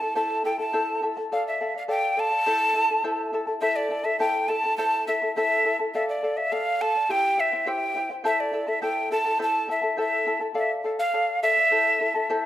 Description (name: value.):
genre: andean folk, Andean ensemble.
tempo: 104 BPM.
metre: 2/4.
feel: straight.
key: A minor.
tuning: A4 = 439 Hz.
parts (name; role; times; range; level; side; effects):
breathy hollow quena; melody; 0.0-12.5 s; D5 to A5; -23 LUFS; equal; none.
charango; accompaniment; 0.0-12.5 s; E4 to A5; -27 LUFS; left 2 dB; none.
room: moderate recital hall reverb, RT60 1.3 s.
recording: none.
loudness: -22 LUFS.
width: side -13 dB against mid.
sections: 0.0-3.6 A section; 3.6-12.5 A section.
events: none.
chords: 0.0 Am; 1.3 Dm; 2.5 Am; 5.9 Dm; 7.1 C; 8.3 Am; 10.6 Dm; 11.7 Am.